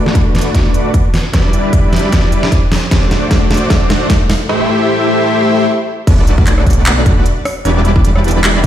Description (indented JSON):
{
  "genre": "future bass",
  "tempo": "152 BPM",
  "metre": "4/4",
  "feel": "swing 56% on 16ths, half-time",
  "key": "E minor",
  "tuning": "A4 = 441 Hz",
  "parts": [
    { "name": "dense compressed supersaw", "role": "riff", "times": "0.0-8.7 s", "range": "G3 to E5", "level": "-14 LUFS", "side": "equal", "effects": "sidechain pumping, low-pass filter, ping-pong delay" },
    { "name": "dubstep drum kit", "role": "drums", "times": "0.1-8.7 s", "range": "crash cymbal, handclaps, hi-hat, rim click, snare drum", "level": "-17 LUFS", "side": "equal", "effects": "studio reverb" },
    { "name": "electronic kick drum", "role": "drums", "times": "0.2-8.7 s", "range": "none", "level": "-12 LUFS", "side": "equal", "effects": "studio reverb" },
    { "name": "wide detuned saw bass", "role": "bass", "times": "6.1-8.7 s", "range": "E1 to B1", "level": "-14 LUFS", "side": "equal", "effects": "chorus, sidechain pumping" }
  ],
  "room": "moderate digital room reverb, RT60 1.2 s",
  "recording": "played on a big sound system in a bare room, stone room reverb",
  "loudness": "-10 LUFS",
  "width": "side -11 dB against mid",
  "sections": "0.0-6.1 A section; 6.1-8.7 B section",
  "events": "build-up 0.0-6.1; drum fill 0.0-4.5; filter sweep on supersaw synth 0.0-6.1; drop 6.1-8.7",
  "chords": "0.0 Bm7; 1.1 Em7; 2.9 D7; 4.5 Am7; 6.1 Bm7; 7.5 Em7"
}